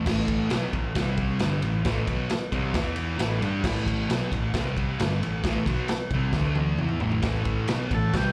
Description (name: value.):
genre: garage rock duo or trio.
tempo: 134 BPM.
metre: 4/4.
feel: straight.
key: A minor.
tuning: A4 = 440 Hz.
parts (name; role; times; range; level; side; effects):
fuzz guitar; riff; 0.0-8.3 s; G2 to G4; -30 LUFS; equal; distortion.
hollow-body short-scale picked electric bass; bass; 0.0-8.3 s; G1 to G2; -33 LUFS; equal; none.
raw garage drum kit; drums; 0.1-8.3 s; crash cymbal, kick drum, ride cymbal, snare drum, toms; -30 LUFS; equal; none.
overdriven combo organ; melody; 7.9-8.3 s; F#4 to A4; -31 LUFS; equal; spring reverb.
room: light reverb.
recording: live gig heard through the venue's PA, club reverb.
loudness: -26 LUFS.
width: mono.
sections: 0.1-7.2 A section; 7.2-8.3 B section.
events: drum fill 6.3-7.2; transistor combo organ solo 7.2-8.3.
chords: 0.1 A5; 1.0 C5; 1.4 Am; 2.8 E5; 3.2 A5; 4.5 C5; 5.0 Am; 6.3 D5; 6.8 A5.